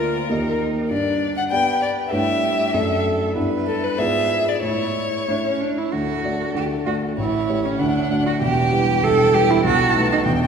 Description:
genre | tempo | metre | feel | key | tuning
quick classical-period movement for piano trio | 97 BPM | 2/4 | rubato | D major | A4 = 440 Hz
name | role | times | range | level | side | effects
warm violin | melody | 0.0-10.5 s | A4 to A5 | -24 LUFS | left 3 dB | none
clear cello | second line | 0.0-10.2 s | C#4 to B4 | -22 LUFS | right 4 dB | none
dark concert grand piano | accompaniment | 0.0-10.5 s | E1 to E5 | -22 LUFS | equal | none
room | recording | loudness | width
wet church reverb, RT60 3.1 s | recorded in a church or concert hall | -18 LUFS | side -6 dB against mid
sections
0.0-5.9 A section; 5.9-10.5 B section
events
none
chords
0.3 Eb; 0.9 G; 2.1 A7/G; 2.7 D/F#; 3.4 Em7/G; 4.0 G#dim7; 4.6 A; 5.9 D; 7.2 A7; 7.8 D; 8.4 Em; 9.6 B7

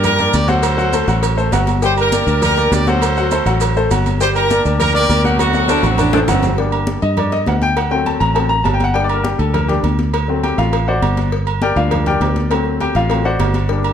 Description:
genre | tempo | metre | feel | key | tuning
latin, salsa | 202 BPM | 4/4 | straight | G harmonic minor | A4 = 441 Hz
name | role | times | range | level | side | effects
brilliant horn section | melody | 0.0-6.2 s | A3 to D5 | -17 LUFS | right 1 dB | none
bright upright piano | accompaniment | 0.0-13.9 s | F#3 to Bb5 | -19 LUFS | left 3 dB | none
fingered electric bass | bass | 0.0-13.9 s | G1 to G2 | -18 LUFS | equal | none
agogo bells and timbales | percussion | 0.0-13.9 s | none | -24 LUFS | right 10 dB | none
congas | percussion | 0.0-13.9 s | none | -24 LUFS | left 2 dB | none
cowbell and bongos | percussion | 0.0-13.8 s | none | -26 LUFS | left 4 dB | none
maracas | percussion | 0.0-6.6 s | none | -31 LUFS | right 10 dB | none
clear saxophone section | second line | 5.7-6.6 s | C4 to D4 | -20 LUFS | right 4 dB | none
room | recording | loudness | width
moderate large studio reverb, RT60 1.2 s | none | -13 LUFS | side -8 dB against mid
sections
0.0-6.6 A section; 6.6-13.9 B section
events
drum fill 5.4-6.6; upright piano solo 6.6-13.9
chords
0.0 Gm; 0.6 D7; 1.8 Gm; 3.0 D7; 4.2 Gm; 5.4 D7; 6.6 Gm; 7.8 D7; 9.0 Gm; 10.1 D7; 11.3 Gm; 12.5 D7

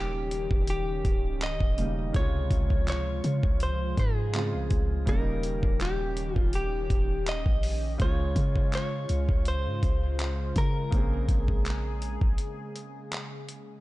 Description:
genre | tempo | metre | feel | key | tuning
contemporary R&B | 82 BPM | 4/4 | swing 54% on 16ths | unclear | A4 = 440 Hz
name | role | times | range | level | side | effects
direct-recorded clean electric guitar | melody | 0.0-13.1 s | G4 to Eb5 | -34 LUFS | left 1 dB | ping-pong delay
warm baby grand piano | accompaniment | 0.0-13.8 s | C3 to Ab4 | -37 LUFS | right 2 dB | none
warm analog pad | sustained chords | 0.0-13.8 s | Db3 to Ab4 | -38 LUFS | equal | chorus, sidechain pumping
warm 808-style bass | bass | 0.0-12.4 s | Db1 to Db3 | -30 LUFS | equal | none
dusty soul sampler-style drum kit | drums | 0.3-13.7 s | handclaps, hi-hat, kick drum | -28 LUFS | equal | none
room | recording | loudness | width
digital ambience | dark, warm production, nothing above 10.9 kHz | -25 LUFS | side -18 dB against mid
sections
0.0-13.8 A section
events
break 12.4-13.8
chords
0.0 Eb7; 2.1 Dbmaj7; 5.1 Eb7; 8.0 Dbmaj7; 10.9 Bbm9

